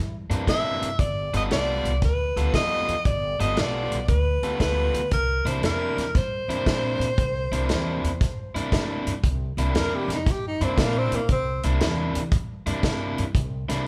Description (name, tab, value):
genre	electric blues shuffle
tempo	116 BPM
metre	4/4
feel	swing 67% on 8ths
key	C mixolydian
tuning	A4 = 440 Hz
part	clear tenor saxophone	melody	0.0-11.6 s	Bb3 to E5	-29 LUFS	equal	none
part	upright bass	bass	0.0-13.8 s	G1 to Bb2	-30 LUFS	equal	none
part	overdriven electric guitar	riff	0.3-13.9 s	C3 to A4	-32 LUFS	equal	none
part	warm soul drum kit	drums	0.3-13.8 s	hi-hat, kick drum, snare drum	-28 LUFS	equal	none
room	light reverb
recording	band playing live in one room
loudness	-24 LUFS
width	mono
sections	0.0-9.2 A section; 9.2-13.9 B section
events	tenor saxophone solo 9.2-13.9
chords	0.0 C9; 1.0 G9; 5.1 C9